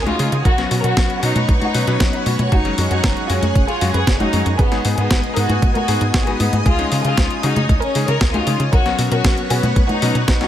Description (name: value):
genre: italo disco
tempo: 116 BPM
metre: 4/4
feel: straight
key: unclear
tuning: A4 = 440 Hz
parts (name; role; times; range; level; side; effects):
- string machine, full ensemble; sustained chords; 0.0-10.5 s; B3 to D#6; -26 LUFS; right 1 dB; ensemble chorus, shimmer reverb
- tight sequencer bass; bass; 0.0-10.5 s; F#1 to C#3; -20 LUFS; right 1 dB; none
- dark chamber violin section; melody; 0.1-10.5 s; B3 to C#5; -22 LUFS; left 1 dB; ping-pong delay, shimmer reverb
- clear electric grand piano; stabs; 0.1-10.5 s; F#3 to B4; -24 LUFS; left 4 dB; shimmer reverb
- clean 12-bit digital drum machine; drums; 0.1-10.5 s; congas, hi-hat, snare drum; -23 LUFS; left 1 dB; overdrive, studio reverb
- electronic kick drum; drums; 0.5-10.4 s; none; -17 LUFS; equal; studio reverb
room: light reverb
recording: none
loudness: -14 LUFS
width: side -11 dB against mid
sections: 0.0-10.5 A section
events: none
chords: 0.5 Bsus2; 2.5 F#sus2; 4.6 G#m; 6.7 C#sus2; 8.7 Bsus2